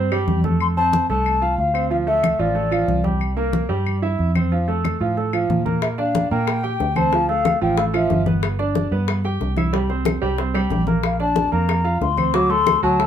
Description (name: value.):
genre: latin, salsa.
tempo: 184 BPM.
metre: 4/4.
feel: straight.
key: F major.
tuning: A4 = 436 Hz.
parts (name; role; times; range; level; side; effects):
clear concert grand piano; accompaniment; 0.0-13.1 s; F3 to G5; -23 LUFS; right 3 dB; none.
vintage muted fingered electric bass; bass; 0.0-13.1 s; G1 to Bb2; -23 LUFS; right 1 dB; none.
claves; percussion; 0.1-12.8 s; none; -32 LUFS; left 7 dB; none.
congas; percussion; 0.1-13.1 s; none; -25 LUFS; left 2 dB; none.
hollow baroque flute; melody; 0.6-3.0, 5.8-8.3, 11.0-13.1 s; D5 to D6; -21 LUFS; left 4 dB; none.
bongos; percussion; 5.8-13.1 s; none; -27 LUFS; left 8 dB; none.
room: moderate small room reverb, RT60 0.5 s.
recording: minimal, uncompressed stereo recording.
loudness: -17 LUFS.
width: side -9 dB against mid.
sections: 0.0-13.1 A section.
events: none.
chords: 0.0 C5; 0.6 F; 1.9 Dm7; 3.2 C7; 4.5 F; 5.8 Bb6; 7.1 Dm; 8.4 G; 9.7 C5; 11.0 Bb; 12.3 D7.